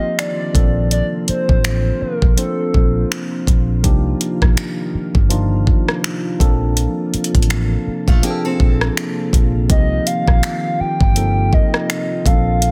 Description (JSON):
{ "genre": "contemporary R&B", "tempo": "82 BPM", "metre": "4/4", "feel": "swing 58% on 16ths", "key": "unclear", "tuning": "A4 = 441 Hz", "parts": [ { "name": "hollow clarinet-like synth lead", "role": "melody", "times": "0.0-3.1, 9.7-12.7 s", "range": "A4 to G5", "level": "-24 LUFS", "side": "equal", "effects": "chorus" }, { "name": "mellow tine electric piano", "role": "accompaniment", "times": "0.0-12.7 s", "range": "F3 to C5", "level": "-25 LUFS", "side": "equal", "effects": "none" }, { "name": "glassy FM pad", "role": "sustained chords", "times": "0.0-12.7 s", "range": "C3 to A4", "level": "-31 LUFS", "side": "equal", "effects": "ensemble chorus, built-in reverb" }, { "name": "smooth R&B drum kit", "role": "drums", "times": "0.2-12.7 s", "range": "finger snaps, hi-hat, kick drum, rim click", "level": "-18 LUFS", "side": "equal", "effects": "soft clipping on snare" }, { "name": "vintage muted fingered electric bass", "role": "bass", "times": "0.6-12.7 s", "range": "G1 to C2", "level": "-20 LUFS", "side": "equal", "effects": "none" }, { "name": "picked acoustic archtop guitar", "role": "arpeggios", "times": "8.1-9.5 s", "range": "A3 to A4", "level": "-28 LUFS", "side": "equal", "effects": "digital delay" } ], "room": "little or no reverb", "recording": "dense, heavily limited modern master", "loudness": "-17 LUFS", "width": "mono", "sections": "0.0-12.7 A section", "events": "none", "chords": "0.0 Cm7; 0.5 Bbmaj9; 3.8 Cm11; 6.4 Bbmaj9; 9.7 Cm7" }